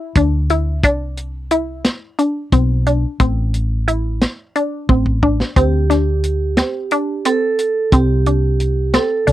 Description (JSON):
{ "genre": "progressive instrumental, band music in an uneven meter", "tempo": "178 BPM (eighths)", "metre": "7/8", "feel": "straight", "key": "unclear", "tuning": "A4 = 439 Hz", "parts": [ { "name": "resonant blip pluck", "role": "arpeggios", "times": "0.0-9.3 s", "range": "C4 to E4", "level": "-19 LUFS", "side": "left 1 dB", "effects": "phaser" }, { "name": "woody fretless electric bass", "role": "bass", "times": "0.2-9.3 s", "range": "A1 to D2", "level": "-17 LUFS", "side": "equal", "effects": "none" }, { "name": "tight funk drum kit", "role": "drums", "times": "0.2-9.3 s", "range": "hi-hat, kick drum, snare drum", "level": "-17 LUFS", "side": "equal", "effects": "none" }, { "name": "vibraphone with medium mallets", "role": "second line", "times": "5.6-9.3 s", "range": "G4 to A4", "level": "-19 LUFS", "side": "right 4 dB", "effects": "none" } ], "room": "little or no reverb", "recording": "dry, close 1970s-style studio recording", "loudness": "-15 LUFS", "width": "side -14 dB against mid", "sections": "0.0-5.6 A section; 5.6-9.3 B section", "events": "drum fill 4.9-5.6", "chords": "0.0 N.C.; 0.8 Csus2; 3.2 Am; 5.6 D7sus4; 7.9 Csus2" }